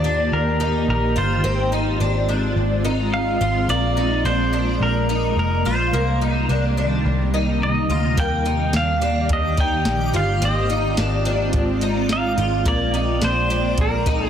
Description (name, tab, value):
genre	dream pop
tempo	107 BPM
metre	4/4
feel	straight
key	Eb major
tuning	A4 = 440 Hz
part	pedal steel guitar	melody	0.0-14.3 s	Bb4 to G5	-24 LUFS	equal	tape echo
part	granular cloud pad	sustained chords	0.0-14.3 s	C3 to D5	-24 LUFS	equal	built-in reverb
part	picked twelve-string acoustic guitar	arpeggios	0.0-14.3 s	Bb3 to F4	-26 LUFS	left 1 dB	ensemble chorus, tape echo
part	vintage muted picked electric bass	bass	0.0-14.3 s	F1 to Eb2	-22 LUFS	equal	none
part	soft vintage rhythm box	drums	8.2-14.2 s	hi-hat, kick drum, snare drum	-24 LUFS	equal	none
part	backwards swelling texture	texture	8.9-14.3 s	C5 to Bb5	-35 LUFS	right 1 dB	built-in reverb, tape echo
room	light reverb, digital ambience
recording	dense, heavily limited modern master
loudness	-18 LUFS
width	side -9 dB against mid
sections	0.0-14.3 A section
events	none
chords	0.0 Ebmaj7; 1.4 Ab6; 3.7 Bb7; 5.9 Cm7; 8.2 Ebmaj7; 10.4 Ab6; 12.7 Bb7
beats	0.32 0.88 | 1.44 2.00 2.56 3.13 | 3.69 4.25 4.81 5.37 | 5.93 6.49 7.05 7.61 | 8.17 8.73 9.29 9.86 | 10.42 10.98 11.54 12.10 | 12.66 13.22 13.78